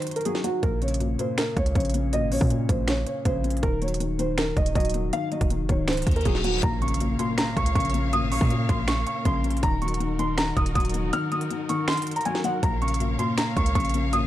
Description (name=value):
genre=hip hop, trap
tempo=160 BPM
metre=4/4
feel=half-time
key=Bb minor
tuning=A4 = 435 Hz
part: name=dark grand piano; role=melody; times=0.0-14.3 s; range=Gb4 to F6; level=-28 LUFS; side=right 2 dB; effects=none
part: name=felt-muted upright piano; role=accompaniment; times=0.0-14.3 s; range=Bb2 to Gb3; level=-28 LUFS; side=left 5 dB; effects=none
part: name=trap drum kit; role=drums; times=0.0-14.2 s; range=finger snaps, hi-hat, kick drum, snare drum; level=-27 LUFS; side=right 1 dB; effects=none
part: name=hard-hitting 808-style bass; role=bass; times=0.6-14.3 s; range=Db1 to Bb2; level=-26 LUFS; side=right 1 dB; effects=none
part: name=reverse cymbal and impact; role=sound effects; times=6.1-8.1 s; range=none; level=-35 LUFS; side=left 1 dB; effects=none
part: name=dark symphonic string section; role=sustained chords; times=6.6-14.3 s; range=Eb3 to F5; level=-34 LUFS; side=right 1 dB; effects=none
room=studio reverb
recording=none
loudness=-22 LUFS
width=side -13 dB against mid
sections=0.0-6.6 A section; 6.6-14.3 B section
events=break 0.0-0.6; reverse cymbal 6.1-6.6; impact 6.6-8.1; kick muted 11.1-12.6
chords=0.0 Ebm; 0.6 Bbm; 3.6 Ebm; 6.6 Bbm; 9.6 Ebm; 12.6 Bbm